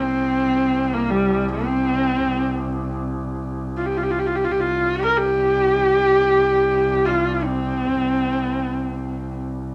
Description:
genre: mongolian traditional, Mongolian folk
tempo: 78 BPM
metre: 4/4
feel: straight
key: unclear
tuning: A4 = 440 Hz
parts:
  - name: warm horsehead fiddle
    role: melody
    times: 0.0-9.4 s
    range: G3 to Bb4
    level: -21 LUFS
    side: equal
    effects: none
  - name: rich double bass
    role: drone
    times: 0.0-9.7 s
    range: C2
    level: -29 LUFS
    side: equal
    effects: none
room: moderate club reverb, RT60 0.6 s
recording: none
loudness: -21 LUFS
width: mono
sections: 0.0-9.7 A section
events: none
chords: none

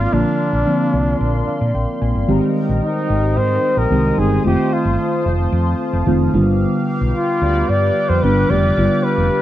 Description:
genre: pop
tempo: 111 BPM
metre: 4/4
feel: straight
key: unclear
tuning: A4 = 435 Hz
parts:
  - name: breathy flugelhorn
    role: melody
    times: 0.0-9.4 s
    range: D4 to D5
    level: -20 LUFS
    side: equal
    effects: slapback echo
  - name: mellow FM electric piano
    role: accompaniment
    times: 0.0-9.4 s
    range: D3 to Ab5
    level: -19 LUFS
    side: equal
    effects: chorus
  - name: sweeping resonant pad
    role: sustained chords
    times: 0.0-9.4 s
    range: Bb4 to Eb6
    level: -26 LUFS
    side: left 1 dB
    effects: chorus, phaser
  - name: woody fretless electric bass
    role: bass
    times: 0.0-9.3 s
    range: F1 to Bb2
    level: -18 LUFS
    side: equal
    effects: none
  - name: mellow synth brass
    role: stabs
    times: 2.3-9.4 s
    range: G3 to D5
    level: -26 LUFS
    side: left 1 dB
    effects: chorus, phaser
room: light reverb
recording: dry, close 1970s-style studio recording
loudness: -14 LUFS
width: side -13 dB against mid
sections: 0.0-2.3 A section; 2.3-9.4 B section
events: FM electric piano fill 1.2-2.3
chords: 0.0 Bb; 2.3 Abmaj7; 4.4 F7; 6.3 G7

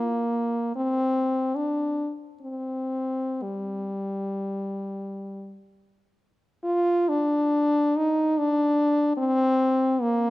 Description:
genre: classical, free, expressive piece for unaccompanied French horn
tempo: 47-75 BPM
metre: 3/4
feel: rubato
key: unclear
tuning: A4 = 440 Hz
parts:
  - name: warm French horn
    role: solo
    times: 0.0-10.3 s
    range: G3 to F4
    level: -23 LUFS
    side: left 1 dB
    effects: none
room: moderate recital hall reverb, RT60 1.7 s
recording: close, detailed microphones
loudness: -23 LUFS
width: side -18 dB against mid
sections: 0.0-6.7 A section; 6.7-10.3 B section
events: none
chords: none

